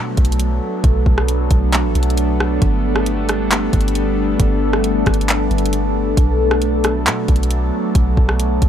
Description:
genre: hip hop, atmospheric cloud-rap.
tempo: 135 BPM.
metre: 4/4.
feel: half-time.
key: unclear.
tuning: A4 = 440 Hz.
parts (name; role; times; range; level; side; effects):
warbly tape-like pad; sustained chords; 0.0-8.7 s; F#3 to A4; -19 LUFS; equal; chorus, built-in reverb, phaser, sidechain pumping.
soft 808-style bass; bass; 0.0-8.7 s; G1 to B2; -18 LUFS; equal; none.
smooth R&B drum kit; drums; 0.2-8.7 s; handclaps, hi-hat, kick drum, rim click; -18 LUFS; equal; none.
room: little or no reverb.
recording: none.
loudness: -14 LUFS.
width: side -9 dB against mid.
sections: 0.0-8.7 A section.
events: none.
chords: 0.0 Bm7; 2.6 Gadd9; 6.2 Bm7.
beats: 0.40 | 0.84 1.28 1.73 2.17 | 2.62 3.06 3.51 3.95 | 4.40 4.84 5.29 5.73 | 6.17 6.62 7.06 7.51 | 7.95 8.40.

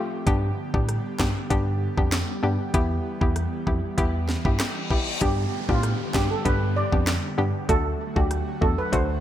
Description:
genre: dancehall.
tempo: 97 BPM.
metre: 4/4.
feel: straight.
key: unclear.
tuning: A4 = 441 Hz.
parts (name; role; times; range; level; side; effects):
hollow square pluck; accompaniment; 0.0-9.1 s; A3 to G4; -29 LUFS; left 3 dB; chorus.
airy breathy pad; sustained chords; 0.0-9.2 s; D3 to G4; -33 LUFS; right 1 dB; chorus, sidechain pumping.
mellow tine electric piano; bass; 0.3-9.2 s; D2 to A2; -26 LUFS; equal; none.
island pop drum kit; drums; 0.3-9.1 s; handclaps, hi-hat, kick drum, rim click, snare drum; -26 LUFS; equal; gated reverb.
reverse cymbal and downlifter; sound effects; 4.4-9.2 s; none; -35 LUFS; left 2 dB; none.
steel pan; melody; 5.2-9.0 s; F4 to D5; -28 LUFS; right 2 dB; digital delay.
room: light reverb, digital ambience.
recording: bright 1980s-style digital production.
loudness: -22 LUFS.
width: side -11 dB against mid.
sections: 0.0-5.2 A section; 5.2-9.2 B section.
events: reverse cymbal 4.4-5.2.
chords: 0.3 G; 2.7 Em; 5.2 G; 7.7 D.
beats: | 0.27 0.89 1.50 2.12 | 2.74 3.36 3.98 4.60 | 5.22 5.83 6.45 7.07 | 7.69 8.31 8.93.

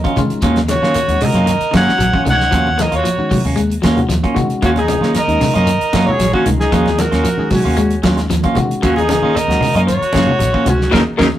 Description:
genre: afrobeat.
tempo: 114 BPM.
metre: 4/4.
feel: straight.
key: Eb minor.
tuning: A4 = 441 Hz.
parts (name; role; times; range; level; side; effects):
breathy alto saxophone; melody; 0.0-11.3 s; Gb4 to Gb5; -18 LUFS; equal; none.
bright trumpet; second line; 0.0-11.3 s; Db4 to Db5; -23 LUFS; right 3 dB; tape echo.
barky reed electric piano; accompaniment; 0.0-11.3 s; Eb3 to Ab4; -23 LUFS; left 2 dB; overdrive, fast tremolo.
electric guitar at the edge of break-up; arpeggios; 0.0-11.3 s; Db3 to Ab3; -22 LUFS; left 2 dB; none.
clean electric guitar; stabs; 0.0-11.3 s; Gb3 to F4; -20 LUFS; right 2 dB; none.
damped 70s drum kit; drums; 0.0-11.3 s; hi-hat, kick drum, snare drum; -21 LUFS; equal; none.
congas; percussion; 0.0-11.3 s; none; -22 LUFS; equal; none.
shekere; percussion; 0.0-11.3 s; none; -30 LUFS; left 2 dB; none.
fingered electric bass; bass; 0.2-11.3 s; Bb1 to Eb3; -19 LUFS; equal; none.
room: moderate small room reverb, RT60 0.6 s.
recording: rough rehearsal-room recording, tube saturation.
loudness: -12 LUFS.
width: side -12 dB against mid.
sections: 0.0-11.4 A section.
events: band accent 10.9-11.4.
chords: 0.0 Ebm9.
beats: | 0.43 0.95 1.48 2.00 | 2.52 3.04 3.57 4.09 | 4.62 5.14 5.67 6.19 | 6.71 7.24 7.76 8.29 | 8.81 9.34 9.87 10.39 | 10.92.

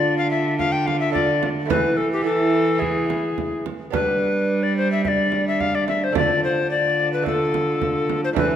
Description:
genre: classical, renaissance-style consort dance.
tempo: 108 BPM.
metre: 4/4.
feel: straight.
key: unclear.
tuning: A4 = 439 Hz.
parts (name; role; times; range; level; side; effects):
tenor recorder; melody; 0.0-8.6 s; G4 to G5; -21 LUFS; left 4 dB; none.
lute; accompaniment; 0.0-8.6 s; D3 to F4; -28 LUFS; right 8 dB; none.
mellow trombone; accompaniment; 0.0-8.6 s; D4 to F4; -27 LUFS; left 1 dB; none.
rich cello; bass; 0.0-8.6 s; D3 to G3; -25 LUFS; right 2 dB; none.
frame drum; percussion; 0.6-8.6 s; none; -28 LUFS; right 8 dB; none.
room: wet recital hall reverb, RT60 1.4 s.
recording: none.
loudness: -18 LUFS.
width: side -9 dB against mid.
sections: 0.0-8.6 A section.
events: none.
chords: 0.0 Dm; 1.7 Esus4; 2.8 E; 3.9 G; 6.2 Dm.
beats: 0.04 0.59 1.15 | 1.70 2.26 2.81 3.38 | 3.94 4.49 5.05 5.60 | 6.16 6.71 7.26 7.81 | 8.36.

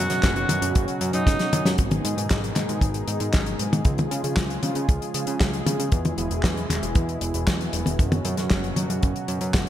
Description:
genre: italo disco.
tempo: 116 BPM.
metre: 4/4.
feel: straight.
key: G# minor.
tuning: A4 = 440 Hz.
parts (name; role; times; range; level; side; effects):
bright alto saxophone; melody; 0.0-1.7 s; D#4 to F#4; -27 LUFS; equal; digital delay.
warm analog pad; sustained chords; 0.0-9.7 s; B2 to G#4; -29 LUFS; right 1 dB; chorus.
fat analog bass; bass; 0.0-9.7 s; E1 to C#3; -28 LUFS; equal; tube saturation.
damped 70s drum kit; drums; 0.1-9.7 s; handclaps, hi-hat, snare drum, toms; -26 LUFS; left 1 dB; small room reverb, gated reverb.
kick drum; drums; 0.2-9.6 s; none; -21 LUFS; equal; small room reverb.
room: light reverb, small room ambience.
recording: none.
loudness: -21 LUFS.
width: side -12 dB against mid.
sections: 0.0-1.8 A section; 1.8-9.7 B section.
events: drum fill 1.3-1.8.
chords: 0.0 F#sus4; 1.8 G#m; 3.9 C#; 5.9 E; 8.0 F#sus4.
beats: 0.23 0.75 1.27 | 1.78 2.30 2.82 3.34 | 3.85 4.37 4.89 5.41 | 5.92 6.44 6.96 7.47 | 7.99 8.51 9.03 9.54.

